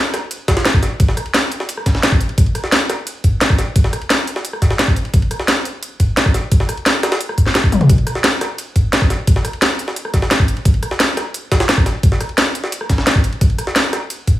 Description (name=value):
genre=drum and bass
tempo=174 BPM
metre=4/4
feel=straight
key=none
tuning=none
part: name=drum and bass drum kit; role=drums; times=0.1-14.3 s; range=hi-hat, rim click, snare drum, toms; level=-16 LUFS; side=equal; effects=none
part: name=jungle sampler-style drum kit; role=drums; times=0.1-14.4 s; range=ride cymbal, snare drum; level=-23 LUFS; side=equal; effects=high-pass filter on cymbals, high-pass filter on snare
part: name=electronic kick drum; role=drums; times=0.5-14.3 s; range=none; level=-14 LUFS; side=equal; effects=none
room=light reverb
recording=small room reverb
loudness=-14 LUFS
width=side -14 dB against mid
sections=0.0-14.4 A section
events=drum fill 7.7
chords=none